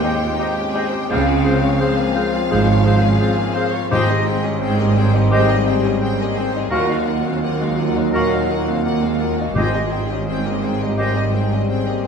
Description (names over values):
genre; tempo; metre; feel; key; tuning
cinematic, emotional film score for orchestra; 85 BPM; 4/4; rubato; Ab major; A4 = 440 Hz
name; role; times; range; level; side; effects
rich studio violin section; melody; 0.0-12.1 s; Eb5 to G5; -27 LUFS; left 5 dB; none
bright flute section; second line; 0.0-11.3 s; Eb5 to F5; -28 LUFS; right 4 dB; none
mellow clarinet; second line; 0.0-11.2 s; Gb4 to Ab4; -27 LUFS; left 2 dB; none
rich studio violin section; second line; 0.0-12.1 s; Eb4 to Db5; -29 LUFS; left 3 dB; none
clear baby grand piano; accompaniment; 0.0-12.1 s; Db2 to G4; -25 LUFS; left 3 dB; none
clear studio viola section; accompaniment; 0.0-12.1 s; Ab3 to Ab4; -29 LUFS; right 1 dB; none
mellow French horn section; sustained chords; 0.0-12.1 s; F3 to G4; -24 LUFS; left 5 dB; none
rich studio cello section; bass; 0.0-12.1 s; Eb2 to Db3; -22 LUFS; right 3 dB; none
rich studio double bass section; bass; 0.0-12.1 s; Ab1 to Eb2; -23 LUFS; right 4 dB; none
warm oboe; second line; 0.1-11.2 s; Bb4 to C5; -29 LUFS; right 2 dB; none
timpani; percussion; 3.9-10.6 s; Ab2 to Eb3; -26 LUFS; left 2 dB; none
room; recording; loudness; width
moderate scoring stage reverb, RT60 1.6 s; none; -16 LUFS; side -6 dB against mid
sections
0.0-12.1 A section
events
none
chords
0.0 Abmaj7; 1.1 Dbmaj7; 3.9 Abmaj7; 6.7 Ebmadd9; 9.6 Abmaj7